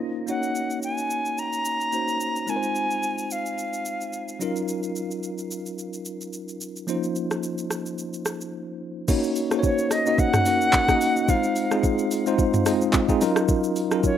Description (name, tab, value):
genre	amapiano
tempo	109 BPM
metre	4/4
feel	swing 55% on 16ths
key	unclear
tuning	A4 = 441 Hz
part	bell-like tine electric piano	accompaniment	0.0-14.2 s	F3 to Eb5	-25 LUFS	left 1 dB	fast stereo tremolo
part	bright reedy silver concert flute	melody	0.3-4.4, 9.6-14.2 s	Db5 to Bb5	-26 LUFS	equal	digital delay
part	smooth R&B drum kit	drums	0.3-14.2 s	crash cymbal, handclaps, hi-hat, kick drum, rim click, shaker, toms	-26 LUFS	equal	none
room	light reverb, digital ambience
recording	rough home demo mix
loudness	-22 LUFS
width	side -10 dB against mid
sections	0.3-9.1 A section; 9.1-14.2 B section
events	break 0.0, 8.5-9.1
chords	0.3 Gb6; 2.5 Fm7; 4.4 Ebm9; 6.9 Dbmaj13/F; 9.1 Gb6; 11.3 Fm7; 13.2 Ebm9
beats	| 0.28 0.83 1.38 1.93 | 2.48 3.03 3.58 4.13 | 4.68 5.23 5.78 6.33 | 6.88 7.43 7.98 8.53 | 9.08 9.63 10.19 10.73 | 11.29 11.84 12.39 12.94 | 13.49 14.04